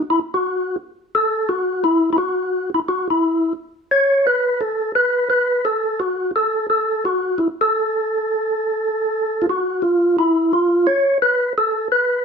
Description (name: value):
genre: jazz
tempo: 173 BPM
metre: 4/4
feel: swing 64% on 8ths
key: unclear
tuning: A4 = 438 Hz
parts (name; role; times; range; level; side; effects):
- percussive tonewheel organ; solo; 0.0-12.2 s; E4 to C#5; -16 LUFS; equal; fast rotary speaker
room: moderate studio reverb, RT60 0.8 s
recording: band playing live in one room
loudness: -17 LUFS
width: side -6 dB against mid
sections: 0.0-12.2 A section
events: none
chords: none